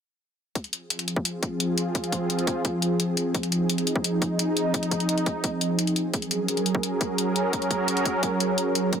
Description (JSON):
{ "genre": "dark technical drum and bass", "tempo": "172 BPM", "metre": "4/4", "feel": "straight", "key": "F phrygian", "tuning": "A4 = 441 Hz", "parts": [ { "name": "sweeping resonant pad", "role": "sustained chords", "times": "0.6-9.0 s", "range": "F3 to Bb4", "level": "-24 LUFS", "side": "right 1 dB", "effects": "chorus, sidechain pumping" }, { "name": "electronic hi-hat", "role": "drums", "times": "0.6-9.0 s", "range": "none", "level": "-28 LUFS", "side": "left 3 dB", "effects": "none" }, { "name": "electronic kick drum", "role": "drums", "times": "0.6-9.0 s", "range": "none", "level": "-28 LUFS", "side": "equal", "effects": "overdrive, high-pass filter on kick" } ], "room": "moderate lush hall reverb, RT60 1.7 s", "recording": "dense, heavily limited modern master", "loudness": "-23 LUFS", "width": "side -7 dB against mid", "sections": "0.6-9.0 A section", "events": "none", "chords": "0.6 Fm7; 6.1 Gb" }